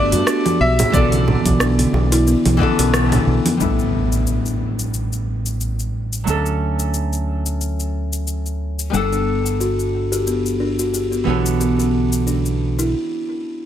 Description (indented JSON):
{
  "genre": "sunset chillout",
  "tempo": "90 BPM",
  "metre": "4/4",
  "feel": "swing 56% on 16ths",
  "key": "unclear",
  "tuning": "A4 = 439 Hz",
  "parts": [
    { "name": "bright concert grand piano", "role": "melody", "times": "0.0-2.9 s", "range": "D5 to E5", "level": "-22 LUFS", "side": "left 2 dB", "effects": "tape echo" },
    { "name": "nylon-string guitar", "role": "accompaniment", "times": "0.0-12.9 s", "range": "D3 to F#5", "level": "-22 LUFS", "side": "moving between left 6 dB and right 7 dB", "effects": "auto-pan, low-pass filter, tape echo" },
    { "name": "buzzing kalimba", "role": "arpeggios", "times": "0.0-3.5, 8.9-12.9 s", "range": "B3 to G4", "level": "-23 LUFS", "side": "left 2 dB", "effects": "tape echo" },
    { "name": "fingered electric bass", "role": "bass", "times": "0.0-12.9 s", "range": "G1 to G2", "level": "-20 LUFS", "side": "equal", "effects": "none" },
    { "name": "smooth R&B drum kit", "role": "drums", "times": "0.1-12.9 s", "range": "congas, hi-hat, rim click, shaker", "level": "-23 LUFS", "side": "right 1 dB", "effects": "none" },
    { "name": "bongos and congas", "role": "percussion", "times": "0.1-3.2 s", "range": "none", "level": "-24 LUFS", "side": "right 3 dB", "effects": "none" },
    { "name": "electronic kick drum", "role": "drums", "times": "0.9-2.8 s", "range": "none", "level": "-20 LUFS", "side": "equal", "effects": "none" },
    { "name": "impact", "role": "sound effects", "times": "3.6-6.3 s", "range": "none", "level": "-26 LUFS", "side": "equal", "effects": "none" }
  ],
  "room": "light reverb",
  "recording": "none",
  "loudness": "-16 LUFS",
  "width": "side -10 dB against mid",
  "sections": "0.0-3.6 A section; 3.6-13.7 B section",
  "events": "band accent 2.9-3.3; impact 3.6-6.3; filter sweep on nylon-string guitar 3.6-13.7; break 12.9-13.7",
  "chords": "0.0 Gmaj9; 0.6 Bm11; 3.6 A9sus4; 6.3 Dmaj7; 8.9 Gmaj9; 11.3 Bm11"
}